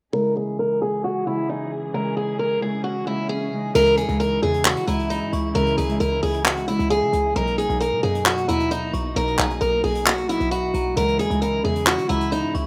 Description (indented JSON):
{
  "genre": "hip hop, trap",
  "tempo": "133 BPM",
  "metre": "4/4",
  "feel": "half-time",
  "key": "C# dorian",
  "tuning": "A4 = 440 Hz",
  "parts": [
    { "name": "picked steel-string acoustic guitar", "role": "melody", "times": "0.1-12.5 s", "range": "D#4 to A#4", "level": "-24 LUFS", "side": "equal", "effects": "low-pass filter" },
    { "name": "Celtic harp", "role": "accompaniment", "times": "0.1-12.7 s", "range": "B2 to E4", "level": "-30 LUFS", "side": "equal", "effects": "low-pass filter" },
    { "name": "dark studio string section", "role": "sustained chords", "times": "0.1-12.7 s", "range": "B2 to G#4", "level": "-35 LUFS", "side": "equal", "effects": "low-pass filter" },
    { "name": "swell", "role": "sound effects", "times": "2.4-3.7 s", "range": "none", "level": "-39 LUFS", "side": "equal", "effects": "none" },
    { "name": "short 808-style bass", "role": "bass", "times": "3.7-12.7 s", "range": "B1 to C#3", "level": "-30 LUFS", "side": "equal", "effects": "none" },
    { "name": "jazz brush drum kit", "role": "drums", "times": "3.7-12.6 s", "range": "crash cymbal, handclaps, hi-hat", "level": "-25 LUFS", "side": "equal", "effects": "none" },
    { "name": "metallic FM bell", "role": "second line", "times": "4.0-12.7 s", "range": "G#5 to C#6", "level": "-36 LUFS", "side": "equal", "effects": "chorus, digital delay" }
  ],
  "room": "moderate plate reverb, RT60 1.7 s, small room ambience",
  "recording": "rough home demo mix",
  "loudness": "-22 LUFS",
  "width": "mono",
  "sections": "0.1-3.7 A section; 3.7-12.7 B section",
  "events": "filter sweep 0.1-3.7",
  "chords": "0.1 C#m; 7.4 Bmaj7; 11.0 C#m",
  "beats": "| 0.14 0.59 1.04 1.49 | 1.94 2.39 2.85 3.30 | 3.75 4.20 4.65 5.10 | 5.55 6.00 6.45 6.91 | 7.36 7.81 8.26 8.71 | 9.16 9.61 10.06 10.52 | 10.97 11.42 11.87 12.32"
}